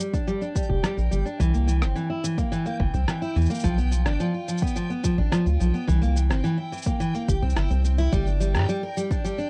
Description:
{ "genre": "folktronica", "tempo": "107 BPM", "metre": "4/4", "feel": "straight", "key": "G dorian", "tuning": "A4 = 440 Hz", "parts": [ { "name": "picked steel-string acoustic guitar", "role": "arpeggios", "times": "0.0-9.5 s", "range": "E3 to Bb4", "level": "-29 LUFS", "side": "equal", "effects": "low-pass filter, tape echo" }, { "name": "electronic cabasa and rim click", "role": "drums", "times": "0.0-9.5 s", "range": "none", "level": "-35 LUFS", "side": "equal", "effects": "none" }, { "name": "backwards swelling texture", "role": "texture", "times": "0.0-9.5 s", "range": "G5", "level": "-42 LUFS", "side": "equal", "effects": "built-in reverb" }, { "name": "electronic kick drum", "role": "drums", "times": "0.1-9.2 s", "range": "none", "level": "-29 LUFS", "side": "equal", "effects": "overdrive" }, { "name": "round analog bass", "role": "bass", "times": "0.7-8.7 s", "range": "F1 to G2", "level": "-24 LUFS", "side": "equal", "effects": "none" } ], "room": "little or no reverb", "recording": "dry, close 1970s-style studio recording", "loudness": "-24 LUFS", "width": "mono", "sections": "0.0-9.5 A section", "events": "none", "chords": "0.0 Gm; 1.4 C7; 3.6 G7; 5.9 C7; 8.1 G5" }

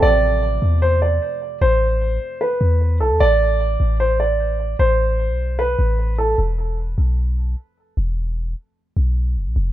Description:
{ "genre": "hip hop", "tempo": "151 BPM", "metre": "4/4", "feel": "half-time", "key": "A minor", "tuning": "A4 = 438 Hz", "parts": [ { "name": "dark grand piano", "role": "melody", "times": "0.0-6.4 s", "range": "A4 to D5", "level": "-19 LUFS", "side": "right 2 dB", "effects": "low-pass filter, plate reverb, digital delay" }, { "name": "concert harp", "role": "accompaniment", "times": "0.0-2.8 s", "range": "A3 to C4", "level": "-30 LUFS", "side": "left 1 dB", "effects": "low-pass filter, plate reverb" }, { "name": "clean 808-style bass", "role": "bass", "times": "0.0-9.7 s", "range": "E1 to E2", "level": "-18 LUFS", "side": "equal", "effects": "none" } ], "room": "light reverb", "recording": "rough home demo mix", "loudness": "-17 LUFS", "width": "side -13 dB against mid", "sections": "0.0-9.7 A section", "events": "break 6.4-9.7", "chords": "0.0 Am; 6.4 E5" }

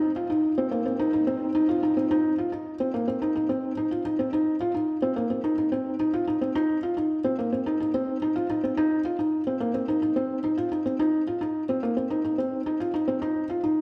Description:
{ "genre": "electronica", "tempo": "108 BPM", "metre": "4/4", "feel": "straight", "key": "unclear", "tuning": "A4 = 441 Hz", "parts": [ { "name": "felt-muted upright piano", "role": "solo", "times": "0.0-13.8 s", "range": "Bb3 to F4", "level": "-26 LUFS", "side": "equal", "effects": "none" } ], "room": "wet recital hall reverb, RT60 1.4 s", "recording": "none", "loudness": "-26 LUFS", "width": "mono", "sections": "0.0-2.1 A section; 2.1-13.8 B section", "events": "build-up 0.0-2.1; drop 2.1-13.8", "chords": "none" }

